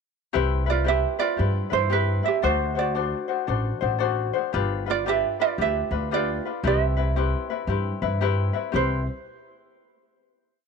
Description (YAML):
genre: Hawaiian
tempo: 114 BPM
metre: 4/4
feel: swing 64% on 8ths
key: C major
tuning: A4 = 440 Hz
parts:
  - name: ukulele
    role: accompaniment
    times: 0.3-9.0 s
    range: C4 to C5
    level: -27 LUFS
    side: left 12 dB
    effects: none
  - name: upright bass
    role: bass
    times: 0.4-9.0 s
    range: G1 to G2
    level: -26 LUFS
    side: equal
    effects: none
  - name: ukulele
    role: melody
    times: 0.7-9.1 s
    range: E4 to E5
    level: -25 LUFS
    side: right 13 dB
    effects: none
room: light reverb, small room ambience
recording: 1960s-style stereo with parts hard left and right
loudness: -22 LUFS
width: side -5 dB against mid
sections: 0.3-8.7 A section; 8.7-10.7 final chord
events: none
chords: 0.3 Cmaj7; 2.4 D7; 4.5 G7; 6.6 Cmaj7